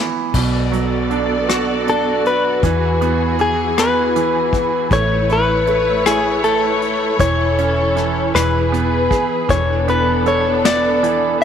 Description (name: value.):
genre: six-eight pop ballad.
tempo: 52 BPM (dotted quarters).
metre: 6/8.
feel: straight.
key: A major.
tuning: A4 = 440 Hz.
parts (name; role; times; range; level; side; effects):
bright grand piano; accompaniment; 0.0-11.4 s; B2 to A4; -20 LUFS; right 10 dB; none.
rich studio string section; sustained chords; 0.3-11.4 s; E3 to D5; -22 LUFS; left 2 dB; none.
vintage muted fingered electric bass; bass; 0.3-11.4 s; E1 to E2; -22 LUFS; left 1 dB; none.
soft brush drum kit; drums; 0.3-11.4 s; crash cymbal, hi-hat, kick drum, rim click, snare drum; -22 LUFS; left 4 dB; none.
direct-recorded clean electric guitar; melody; 1.9-11.4 s; G#4 to D5; -18 LUFS; left 4 dB; harmonic tremolo.
room: light reverb.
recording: 1960s-style stereo.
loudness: -14 LUFS.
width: side -8 dB against mid.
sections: 0.3-11.4 A section.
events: drum fill 0.0-0.3.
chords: 0.3 Bm7; 2.6 Eadd9; 4.9 Aadd9; 7.2 A/E; 8.3 E; 9.5 E7sus4.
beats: | 0.34 1.49 | 2.63 3.77 | 4.91 6.05 | 7.20 8.34 | 9.49 10.64.